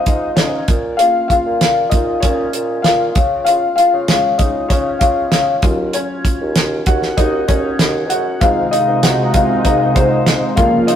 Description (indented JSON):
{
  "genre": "piano-driven pop",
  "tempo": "97 BPM",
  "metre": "4/4",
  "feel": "straight",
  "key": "unclear",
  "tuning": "A4 = 440 Hz",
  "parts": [
    { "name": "felt-muted upright piano", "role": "accompaniment", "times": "0.0-11.0 s", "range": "F3 to Gb5", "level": "-16 LUFS", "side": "left 2 dB", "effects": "none" },
    { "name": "mellow bassoon", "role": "bass", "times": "0.1-10.9 s", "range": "Eb2 to Db3", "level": "-21 LUFS", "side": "right 1 dB", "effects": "none" },
    { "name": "damped 70s drum kit", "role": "drums", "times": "0.1-11.0 s", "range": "hi-hat, kick drum, snare drum", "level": "-16 LUFS", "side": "right 1 dB", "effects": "none" },
    { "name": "warm analog pad", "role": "sustained chords", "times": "8.4-11.0 s", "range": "C3 to F4", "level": "-17 LUFS", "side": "right 1 dB", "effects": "chorus" }
  ],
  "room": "moderate stone room reverb, RT60 1.3 s",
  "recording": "rough rehearsal-room recording, warm saturation",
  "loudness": "-12 LUFS",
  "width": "side -9 dB against mid",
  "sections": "0.0-11.0 A section",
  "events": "felt piano solo 0.0-11.0",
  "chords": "0.0 Ab; 0.7 Bbm; 3.2 Db; 5.6 Ebm7; 8.4 Ab"
}